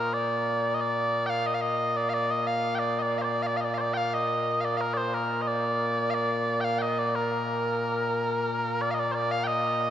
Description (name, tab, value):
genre	scottish traditional, Scottish pipe music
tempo	90 BPM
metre	2/4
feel	straight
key	Bb major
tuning	A4 = 440 Hz
part	mellow small bagpipes	solo	0.0-9.9 s	Bb2 to G5	-25 LUFS	equal	none
room	wet cathedral reverb, RT60 5.3 s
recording	recorded in a church or concert hall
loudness	-25 LUFS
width	side -10 dB against mid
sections	0.0-8.8 A section; 8.8-9.9 A section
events	none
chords	none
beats	0.15 | 0.82 1.48 | 2.15 2.82 | 3.48 4.15 | 4.82 5.48 | 6.15 6.82 | 7.48 8.15 | 8.82 9.48